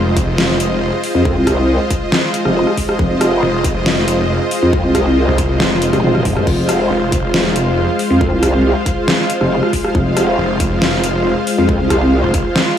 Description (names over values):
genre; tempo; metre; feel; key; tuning
heavy wobble dubstep; 138 BPM; 4/4; half-time; F minor; A4 = 440 Hz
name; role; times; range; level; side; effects
supersaw pad; sustained chords; 0.0-12.8 s; Ab3 to F5; -17 LUFS; equal; sidechain pumping
snarling distorted saw bass; bass; 0.0-12.4 s; F1 to C2; -18 LUFS; equal; distortion, overdrive
dubstep drum kit; drums; 0.2-12.6 s; crash cymbal, hi-hat, rim click, snare drum, toms; -18 LUFS; equal; overdrive
electronic kick drum; drums; 0.2-12.4 s; none; -20 LUFS; equal; overdrive
growl bass; bass; 1.1-12.2 s; Eb1 to F2; -14 LUFS; equal; chorus, overdrive
room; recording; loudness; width
light reverb; small room ambience; -12 LUFS; side -9 dB against mid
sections
0.0-12.8 A section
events
drum fill 5.6-6.5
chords
0.0 Fm